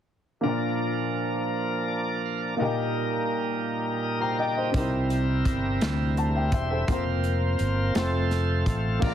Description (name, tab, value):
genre	slow gospel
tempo	56 BPM (dotted quarters)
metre	6/8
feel	straight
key	Bb major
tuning	A4 = 440 Hz
part	warm baby grand piano	accompaniment	0.4-9.1 s	Bb2 to Bb5	-28 LUFS	left 1 dB	none
part	bright tonewheel organ	sustained chords	0.4-9.1 s	Bb2 to G5	-29 LUFS	right 1 dB	slow rotary speaker, overdrive
part	fingered electric bass	bass	4.7-9.1 s	E1 to D2	-26 LUFS	equal	none
part	natural country drum kit	drums	4.7-9.1 s	crash cymbal, hi-hat, kick drum, snare drum	-29 LUFS	equal	none
room	light reverb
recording	heavily compressed radio sound, multiband compression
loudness	-24 LUFS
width	side -10 dB against mid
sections	0.4-9.0 A section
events	tonewheel organ fill 3.7-4.7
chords	0.4 Bb; 2.6 Eb/Bb; 4.7 C7; 6.9 Fsus4; 8.0 F